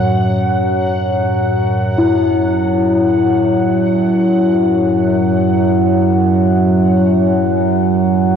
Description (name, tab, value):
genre	dark ambient drone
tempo	free time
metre	none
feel	none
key	F# minor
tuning	A4 = 442 Hz
part	bronze singing bowl	arpeggios	0.0-8.4 s	A2 to E4	-16 LUFS	left 2 dB	ping-pong delay
part	overtone-sweeping drone	drone	0.0-8.4 s	F#2 to F#3	-14 LUFS	right 1 dB	chorus, built-in reverb
part	bubbling stepped-filter texture	texture	0.0-8.4 s	F#5	-30 LUFS	right 2 dB	chorus, built-in reverb
room	wet cathedral reverb, RT60 6.8 s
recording	worn, warbling old tape, cassette tape, warbly pitch drift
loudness	-12 LUFS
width	side -7 dB against mid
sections	0.0-8.4 A section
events	fade-out on synth texture 0.0-8.4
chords	0.0 F#m